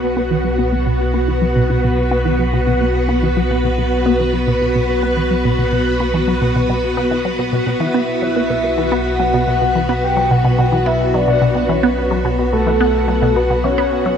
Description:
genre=ambient, sequencer-driven space music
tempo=108 BPM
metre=4/4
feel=straight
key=unclear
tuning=A4 = 440 Hz
part: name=string machine, full ensemble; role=sustained chords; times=0.0-14.2 s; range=B3 to C#5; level=-18 LUFS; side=left 1 dB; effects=ensemble chorus
part: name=analog drone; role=bass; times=0.0-14.2 s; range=B1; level=-21 LUFS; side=equal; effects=chorus
part: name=wind-like tuned noise texture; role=texture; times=0.7-14.2 s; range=B4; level=-28 LUFS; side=right 2 dB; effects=built-in reverb
part: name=resonant blip pluck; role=riff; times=0.2-14.1 s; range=B2 to B3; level=-19 LUFS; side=equal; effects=phaser, ping-pong delay
part: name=soft octave-layered synth lead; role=melody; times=7.8-14.2 s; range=A4 to G5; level=-18 LUFS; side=left 2 dB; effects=chorus, phaser, ping-pong delay
room=moderate plate reverb, RT60 2.8 s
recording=none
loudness=-14 LUFS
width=side -8 dB against mid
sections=0.0-14.2 A section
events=filter sweep on synth arpeggio sound 0.0-14.2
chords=0.0 Bsus2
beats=0.03 0.58 | 1.14 1.70 2.25 2.81 | 3.36 3.92 4.47 5.03 | 5.58 6.14 6.70 7.25 | 7.81 8.36 8.92 9.47 | 10.03 10.59 11.14 11.70 | 12.25 12.81 13.36 13.92

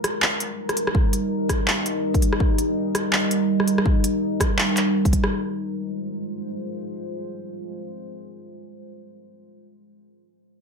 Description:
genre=half-time drum and bass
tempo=165 BPM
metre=4/4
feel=swing 58% on 16ths, half-time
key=F minor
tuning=A4 = 440 Hz
part: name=deep dark ambient pad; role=sustained chords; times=0.0-8.4 s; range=G3 to C5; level=-24 LUFS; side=equal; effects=chorus, built-in reverb, sidechain pumping
part: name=industrial drum kit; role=drums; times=0.0-5.3 s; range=handclaps, hi-hat, rim click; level=-24 LUFS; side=equal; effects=none
part: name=electronic kick drum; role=drums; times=0.9-5.2 s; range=none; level=-21 LUFS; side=equal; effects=none
room=moderate digital room reverb, RT60 0.9 s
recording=none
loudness=-20 LUFS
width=side -5 dB against mid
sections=0.0-5.3 A section; 5.3-8.2 B section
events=none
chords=0.0 Eb; 5.3 Fm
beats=0.22 0.58 | 0.95 1.31 1.67 2.04 | 2.40 2.77 3.13 3.49 | 3.86 4.22 4.58 4.95 | 5.31 5.67 6.04 6.40 | 6.76 7.13 7.49 7.86

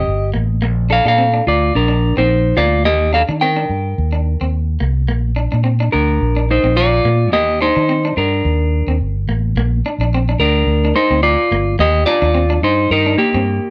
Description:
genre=highlife guitar band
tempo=107 BPM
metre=4/4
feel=swing 54% on 16ths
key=Bb major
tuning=A4 = 440 Hz
part: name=semi-hollow electric guitar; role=melody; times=0.0-13.7 s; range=Bb3 to G5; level=-17 LUFS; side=equal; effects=plate reverb
part: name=clean electric guitar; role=accompaniment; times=0.0-13.5 s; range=Bb3 to D4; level=-26 LUFS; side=equal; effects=none
part: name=fingered electric bass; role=bass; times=0.0-13.6 s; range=G1 to Eb3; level=-19 LUFS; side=equal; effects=none
room=light reverb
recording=none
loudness=-15 LUFS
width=mono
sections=0.0-9.6 A section; 9.6-13.7 B section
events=none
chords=0.0 Eb; 0.6 Bb; 2.9 Eb; 5.1 Bb; 7.3 Eb; 9.6 Bb; 11.8 Eb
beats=0.05 | 0.61 1.17 1.73 2.29 | 2.85 3.41 3.97 4.53 | 5.09 5.65 6.21 6.77 | 7.33 7.89 8.45 9.01 | 9.57 10.12 10.68 11.24 | 11.80 12.36 12.91 13.47

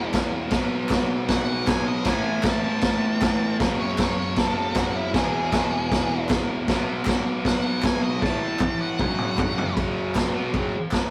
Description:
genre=garage rock duo or trio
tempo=156 BPM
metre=4/4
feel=straight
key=unclear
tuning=A4 = 439 Hz
part: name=octave-fuzz lead guitar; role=melody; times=0.0-9.7 s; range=E4 to A5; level=-32 LUFS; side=equal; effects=distortion
part: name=thick fuzz guitar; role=riff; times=0.0-10.7 s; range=E2 to B3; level=-28 LUFS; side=equal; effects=distortion
part: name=vintage drum kit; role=drums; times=0.1-11.0 s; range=crash cymbal, kick drum, snare drum, toms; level=-26 LUFS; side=equal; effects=none
part: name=group handclap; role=percussion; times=0.1-11.0 s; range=none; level=-39 LUFS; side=equal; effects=none
room=moderate stone room reverb, RT60 1.3 s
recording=rough rehearsal-room recording, warm saturation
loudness=-24 LUFS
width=mono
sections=0.0-9.8 A section; 9.8-11.1 B section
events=drum fill 8.2-9.8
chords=0.0 E; 0.5 B5; 2.1 A5; 3.6 F#5; 5.1 E; 6.7 B5; 8.2 A5; 9.0 F#5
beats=0.14 | 0.52 0.91 1.29 1.67 | 2.06 2.44 2.83 3.21 | 3.60 3.98 4.37 4.75 | 5.14 5.52 5.91 6.29 | 6.68 7.07 7.45 7.84 | 8.22 8.61 9.00 9.38 | 9.77 10.16 10.54 10.93

